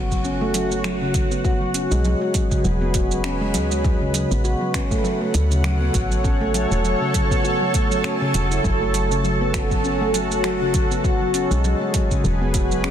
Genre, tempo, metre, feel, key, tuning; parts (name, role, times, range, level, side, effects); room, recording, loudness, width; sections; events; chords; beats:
organic downtempo; 100 BPM; 4/4; swing 56% on 16ths; F# minor; A4 = 438 Hz
granular cloud pad; sustained chords; 0.1-12.9 s; F#4 to F#5; -25 LUFS; equal; built-in reverb, sidechain pumping
handpan; arpeggios; 0.0-12.9 s; C#3 to F#4; -23 LUFS; equal; ping-pong delay
woody FM bass; bass; 0.0-12.9 s; E1 to D2; -24 LUFS; equal; sidechain pumping
afro-pop drum kit; drums; 0.1-12.9 s; finger snaps, hi-hat, shaker; -30 LUFS; right 3 dB; soft clipping on snare
electronic kick drum; drums; 0.1-12.7 s; -22 LUFS; equal
light reverb; dense, heavily limited modern master; -18 LUFS; side -9 dB against mid
0.0-12.9 A section
0.0 F#m; 1.4 E; 3.8 Dmaj7; 6.2 A; 8.6 F#m; 11.0 E
0.24 0.84 | 1.44 2.04 2.64 3.24 | 3.84 4.44 5.04 5.64 | 6.24 6.84 7.44 8.04 | 8.64 9.24 9.84 10.44 | 11.04 11.64 12.24 12.84